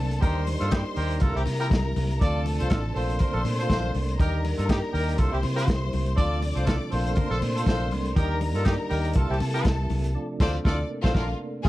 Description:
disco; 121 BPM; 4/4; swing 56% on 16ths; A4 = 440 Hz
clear studio string section; second line; 0.0-11.7 s; F4 to D6; -34 LUFS; left 3 dB
percussive tonewheel organ; sustained chords; 0.0-11.7 s; C3 to F4; -33 LUFS; right 2 dB; fast rotary speaker
vintage muted fingered electric bass; bass; 0.0-11.7 s; A1 to C3; -27 LUFS; equal
vintage drum kit; drums; 0.1-11.7 s; crash cymbal, hi-hat, kick drum, snare drum; -26 LUFS; equal
mellow horn section; stabs; 0.2-11.7 s; G3 to D5; -31 LUFS; equal
congas; percussion; 0.2-10.0 s; -36 LUFS; left 6 dB
small room ambience; dark, warm production; -22 LUFS; side -16 dB against mid
0.0-11.7 A section
band accent 10.2-11.7
0.2 Ebmaj7; 1.2 C7; 2.2 Dm7; 3.0 Bbmaj9; 4.2 Ebmaj7; 5.2 C7; 6.2 Dm7; 6.9 Bbmaj9; 8.2 Ebmaj7; 9.2 C7; 10.2 Dm7; 10.9 Bbmaj9

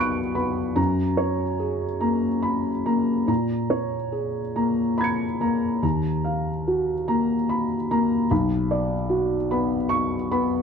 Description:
neoclassical minimalist piano; 48 BPM (dotted quarters); 6/8; rubato; Eb minor; A4 = 440 Hz
felt-muted upright piano; solo; 0.0-10.6 s; B1 to D7; -21 LUFS; equal
light reverb; dark, warm production; -21 LUFS; side -6 dB against mid
0.0-10.6 A section
0.0 Bm; 0.8 Gbadd9; 3.3 Bbm7; 5.8 Ebmadd9; 8.3 Bm

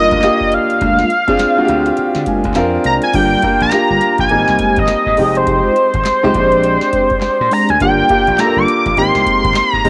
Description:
R&B, new jack swing; 103 BPM; 4/4; swing 61% on 16ths; A4 = 440 Hz
octave-doubled lead; melody; 0.0-9.9 s; C5 to D6; -16 LUFS; equal; chorus, cassette tape
clear grand piano; accompaniment; 0.0-9.9 s; G3 to Ab5; -19 LUFS; equal; cassette tape
mellow synth brass; stabs; 0.0-9.4 s; G3 to G4; -24 LUFS; equal; chorus, cassette tape
gritty slap bass; bass; 0.1-9.9 s; F1 to D3; -23 LUFS; equal; overdrive
booming analog drum machine; drums; 0.1-9.9 s; crash cymbal, handclaps, hi-hat, kick drum, snare drum; -25 LUFS; equal; cassette tape
moderate spring reverb, RT60 1.8 s; home recording on cassette; -13 LUFS; mono
0.0-3.1 A section; 3.1-9.9 B section
grand piano fill 2.0-3.1
0.0 Ebmaj9; 0.8 Bb7/D; 3.1 Gm7; 4.3 Abmaj9; 5.2 Fm9; 6.3 Bb13; 7.8 Gm7; 9.0 Abmaj9

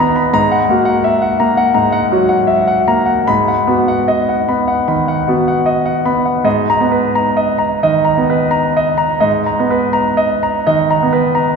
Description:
neoclassical minimalist piano; 74-88 BPM; 4/4; rubato; G# minor; A4 = 440 Hz
clear concert grand piano; solo; 0.0-11.6 s; G#2 to B5; -12 LUFS; equal
wet church reverb, RT60 2.8 s; recorded in a church or concert hall; -12 LUFS; side -5 dB against mid
0.0-6.5 A section; 6.5-11.6 B section
0.4 F#7/G#; 3.3 G#m7; 6.5 G#madd9

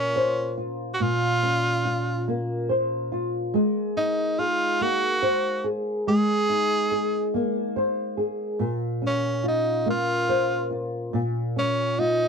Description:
six-eight pop ballad; 47 BPM (dotted quarters); 6/8; straight; Bb minor; A4 = 445 Hz
edgy tenor saxophone; melody; 0.0-12.3 s; Db4 to Ab4; -24 LUFS; right 1 dB
flamenco guitar; accompaniment; 0.0-12.3 s; Bb2 to C5; -24 LUFS; left 1 dB; double-tracked left and right
light reverb; dry, close 1970s-style studio recording; -22 LUFS; side -5 dB against mid
0.0-12.3 A section
0.0 Bbmadd9; 3.5 Abadd9; 8.6 Bbmadd9

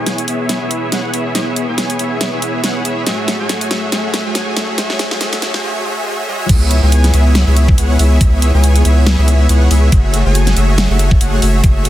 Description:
future bass; 140 BPM; 4/4; swing 56% on 16ths, half-time; A4 = 437 Hz
dense compressed supersaw; riff; 0.0-11.9 s; G#3 to G#5; -17 LUFS; equal; sidechain pumping, low-pass filter, dub echo
dubstep drum kit; drums; 0.1-11.9 s; crash cymbal, hi-hat, snare drum; -20 LUFS; equal; high-pass filter on snare, high-pass filter on hats, high-pass filter on cymbals
saturated sub bass; bass; 6.5-11.9 s; F#1 to C#2; -11 LUFS; equal; sidechain pumping
electronic kick drum; drums; 6.5-11.7 s; -11 LUFS; equal
light reverb; dense, heavily limited modern master, high-pass filter; -11 LUFS; side -14 dB against mid
0.0-6.5 A section; 6.5-11.9 B section
build-up 0.0-6.5; drum fill 0.0-5.6; filter sweep on supersaw synth 0.0-6.5; drop 6.5-11.9
0.0 C#m7; 3.1 F#m9; 6.3 C#m; 6.5 C#m7; 9.9 F#m9

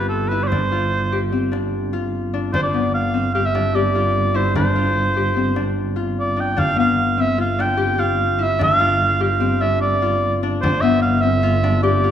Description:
contemporary instrumental, chamber music in an uneven meter; 148 BPM; 5/4; straight; G mixolydian; A4 = 436 Hz
clear oboe; melody; 0.0-12.1 s; A4 to G5; -20 LUFS; right 2 dB
Celtic harp; arpeggios; 0.0-12.1 s; B3 to G4; -22 LUFS; left 6 dB
dark double bass; bass; 0.0-12.1 s; G1; -22 LUFS; right 2 dB
frame drum; percussion; 0.5-11.8 s; -26 LUFS; left 1 dB
wet recital hall reverb, RT60 1.5 s; recorded in a church or concert hall; -16 LUFS; side -9 dB against mid
0.0-12.1 A section
0.0 G7sus4

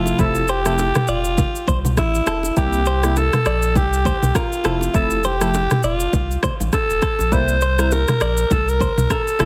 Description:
afrobeats; 101 BPM; 4/4; swing 58% on 16ths; F major; A4 = 439 Hz
raspy alto saxophone; melody; 0.0-9.5 s; E4 to C5; -23 LUFS; equal; delay
warm analog keys; accompaniment; 0.0-9.5 s; C3 to E4; -25 LUFS; equal; chorus
warm sub bass; bass; 0.0-9.5 s; E1 to C2; -24 LUFS; equal
afro-pop drum kit; drums; 0.1-9.5 s; kick drum, rim click, shaker, toms; -24 LUFS; equal
bongos and congas; percussion; 0.1-9.5 s; -29 LUFS; equal
direct-recorded clean electric guitar; riff; 0.5-9.5 s; A4 to D5; -30 LUFS; equal; spring reverb, delay
little or no reverb; heavily compressed radio sound; -19 LUFS; mono
0.0-9.5 A section
0.0 Fmaj7; 2.6 C7; 4.6 Fmaj7; 7.3 C7

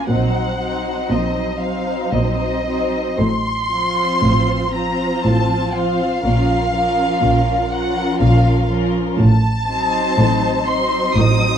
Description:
classical, slow romantic movement for string orchestra; 60 BPM; 3/4; rubato; Bb minor; A4 = 442 Hz
warm studio violin section; melody; 0.0-11.6 s; Eb5 to Eb6; -21 LUFS; equal
warm studio violin section; second line; 0.0-11.6 s; Eb4 to C5; -24 LUFS; left 2 dB
warm studio viola section; accompaniment; 0.0-11.6 s; F3 to Db4; -22 LUFS; right 1 dB
dark studio double bass section; bass; 0.1-11.6 s; A1 to Bb1; -20 LUFS; right 1 dB
warm studio cello section; bass; 0.1-11.6 s; A2 to Bb2; -21 LUFS; left 1 dB
light reverb; dark, warm production; -15 LUFS; side -8 dB against mid
0.0-11.6 A section
0.1 Cm7b5/Bb; 3.2 F/A; 6.2 Bbm; 9.2 Adim7

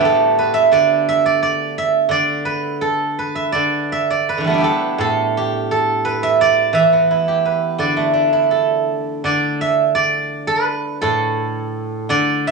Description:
chinese traditional, Chinese solo plucked strings; 85 BPM; 2/4; rubato; D zhi mode; A4 = 440 Hz
steel-string zither; solo; 0.0-12.5 s; A2 to E5; -15 LUFS; right 3 dB; cassette tape
moderate booth ambience, RT60 0.2 s; home recording on cassette, studio ambience; -15 LUFS; side -3 dB against mid
0.0-9.3 A section; 9.3-12.5 B section

